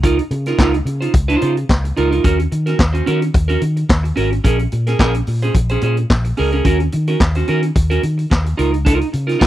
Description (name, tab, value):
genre	disco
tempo	109 BPM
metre	4/4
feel	straight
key	Eb dorian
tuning	A4 = 438 Hz
part	clean electric guitar	accompaniment	0.0-9.5 s	Db4 to C5	-18 LUFS	right 3 dB	none
part	fingered electric bass with an envelope filter	bass	0.0-9.5 s	Ab1 to Eb3	-18 LUFS	equal	none
part	vintage drum kit	drums	0.0-9.5 s	handclaps, hi-hat, kick drum, snare drum	-16 LUFS	equal	none
room	little or no reverb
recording	dry, close 1970s-style studio recording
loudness	-14 LUFS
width	side -14 dB against mid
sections	0.0-9.5 A section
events	none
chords	0.0 Db69; 2.2 Ebm7; 4.4 Bbm7; 6.7 Ebm7; 8.6 Db69